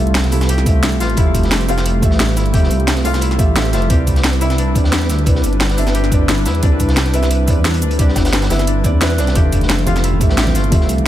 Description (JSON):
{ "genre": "liquid drum and bass", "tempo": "176 BPM", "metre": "4/4", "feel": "straight", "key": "F lydian", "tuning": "A4 = 439 Hz", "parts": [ { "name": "felt-muted upright piano", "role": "accompaniment", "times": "0.0-11.1 s", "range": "F3 to F5", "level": "-23 LUFS", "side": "right 2 dB", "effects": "dub echo" }, { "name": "airy breathy pad", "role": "sustained chords", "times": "0.0-11.1 s", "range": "G3 to B4", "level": "-24 LUFS", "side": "right 2 dB", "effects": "chorus" }, { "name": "concert harp", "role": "arpeggios", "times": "0.0-11.1 s", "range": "D4 to B4", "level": "-24 LUFS", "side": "left 7 dB", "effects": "ping-pong delay" }, { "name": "dark detuned saw bass", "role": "bass", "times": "0.0-11.1 s", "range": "F1 to E2", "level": "-17 LUFS", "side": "equal", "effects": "none" }, { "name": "crunchy breakbeat drum kit", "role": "drums", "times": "0.1-11.0 s", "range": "hi-hat, snare drum", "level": "-27 LUFS", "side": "right 1 dB", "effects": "high-pass filter on hats, high-pass filter on snare, high-pass filter on room" }, { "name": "drum and bass drum kit", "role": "drums", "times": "0.1-11.0 s", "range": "hi-hat, shaker, snare drum", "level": "-20 LUFS", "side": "equal", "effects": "overdrive" }, { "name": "electronic kick drum", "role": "drums", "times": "0.7-10.8 s", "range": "none", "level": "-15 LUFS", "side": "equal", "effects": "none" }, { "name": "congas", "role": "percussion", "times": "9.4-11.0 s", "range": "none", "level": "-23 LUFS", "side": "left 2 dB", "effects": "none" } ], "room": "small room ambience", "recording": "none", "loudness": "-12 LUFS", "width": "side -12 dB against mid", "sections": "0.0-11.1 A section", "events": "none", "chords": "0.0 Fmaj9; 3.9 Cmaj9; 9.4 Fmaj9" }